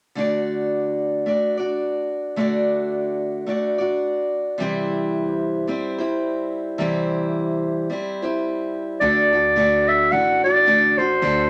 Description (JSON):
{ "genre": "acoustic folk duo or small band", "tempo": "108 BPM", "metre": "4/4", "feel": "swing 57% on 8ths", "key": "D mixolydian", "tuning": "A4 = 440 Hz", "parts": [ { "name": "picked steel-string acoustic guitar", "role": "accompaniment", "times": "0.2-11.5 s", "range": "C3 to D5", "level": "-24 LUFS", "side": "equal", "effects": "none" }, { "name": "warm clarinet", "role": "melody", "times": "9.0-11.5 s", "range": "C5 to F#5", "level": "-18 LUFS", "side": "equal", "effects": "none" }, { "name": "upright bass", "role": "bass", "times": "9.0-11.5 s", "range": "A1 to D2", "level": "-35 LUFS", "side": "equal", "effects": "none" } ], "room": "wet studio reverb, RT60 0.5 s", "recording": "none", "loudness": "-21 LUFS", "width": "mono", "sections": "0.2-9.0 A section; 9.0-11.5 B section", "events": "none", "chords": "0.2 D; 4.6 C; 9.0 D" }